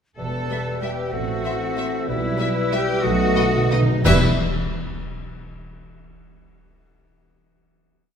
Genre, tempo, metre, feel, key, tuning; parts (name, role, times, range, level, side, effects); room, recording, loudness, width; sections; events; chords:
classical, orchestral ballroom waltz; 171-203 BPM; 3/4; rubato; E minor; A4 = 440 Hz
mellow clarinet; second line; 0.2-4.2 s; B4 to C5; -33 LUFS; equal
mellow hollow silver concert flute; second line; 0.2-4.2 s; D#5 to A5; -33 LUFS; left 3 dB
warm oboe; second line; 0.2-4.2 s; D#5 to E5; -33 LUFS; left 1 dB
mellow bassoon; accompaniment; 0.2-4.2 s; G3 to A3; -29 LUFS; right 3 dB
dark French horn section; sustained chords; 0.2-4.2 s; G3 to G4; -30 LUFS; left 3 dB
concert harp; arpeggios; 0.2-5.1 s; E2 to A5; -29 LUFS; left 7 dB
rich symphonic cello section; bass; 0.2-4.2 s; D#4 to A4; -27 LUFS; right 2 dB
warm symphonic double bass section; bass; 0.2-4.2 s; E1 to E2; -26 LUFS; right 3 dB
rich symphonic violin section; melody; 0.5-4.2 s; D#5 to E5; -30 LUFS; left 2 dB
dark studio violin section; second line; 0.5-4.2 s; B4 to C5; -36 LUFS; right 1 dB
warm studio viola section; accompaniment; 0.5-4.2 s; G3 to A3; -33 LUFS; right 1 dB
cymbal swell, clash cymbals and concert bass drum; percussion; 2.1-4.7 s; -27 LUFS; equal
timpani; percussion; 3.0-4.2 s; E2 to B2; -23 LUFS; right 1 dB
wet concert hall reverb, RT60 2.0 s; minimal, uncompressed stereo recording; -19 LUFS; side -7 dB against mid
0.2-4.1 A section; 4.1-5.0 final chord
timpani fill 3.0-4.1; band accent 4.1-4.4
0.2 Em; 1.1 Am; 2.1 Em/B; 3.0 B7; 4.1 Em